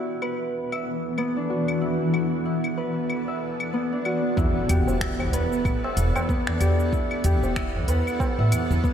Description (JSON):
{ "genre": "organic downtempo", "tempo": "94 BPM", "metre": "4/4", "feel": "swing 58% on 16ths", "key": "E minor", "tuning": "A4 = 437 Hz", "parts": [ { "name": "granular cloud pad", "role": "sustained chords", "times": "0.0-8.9 s", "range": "E3 to F#5", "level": "-28 LUFS", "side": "equal", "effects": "built-in reverb, lush chorus, sidechain pumping" }, { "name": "Celtic harp", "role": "arpeggios", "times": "0.0-8.9 s", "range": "B3 to E5", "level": "-28 LUFS", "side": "equal", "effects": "tape echo" }, { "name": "deep house drum kit", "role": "drums", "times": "0.2-8.9 s", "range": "claves, finger snaps, hi-hat, shaker", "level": "-35 LUFS", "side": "left 2 dB", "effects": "none" }, { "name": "upright bass", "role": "bass", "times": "4.4-8.9 s", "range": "E1 to A2", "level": "-23 LUFS", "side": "equal", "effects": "sidechain pumping" }, { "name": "electronic kick drum", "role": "drums", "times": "4.4-8.9 s", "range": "none", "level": "-26 LUFS", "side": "equal", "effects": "none" }, { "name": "impact", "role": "sound effects", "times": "4.4-6.9 s", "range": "none", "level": "-35 LUFS", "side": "right 1 dB", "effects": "none" }, { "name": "tabla", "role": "percussion", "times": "4.9-8.7 s", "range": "none", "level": "-32 LUFS", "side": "right 1 dB", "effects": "none" } ], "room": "moderate lush hall reverb, RT60 2.7 s", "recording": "dreamy mix soaked in reverb", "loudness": "-22 LUFS", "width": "side -9 dB against mid", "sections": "0.0-4.4 A section; 4.4-8.9 B section", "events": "filter sweep on ambient pad 0.0-4.4; impact 4.4-6.9", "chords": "0.0 E9sus4; 4.4 Em7" }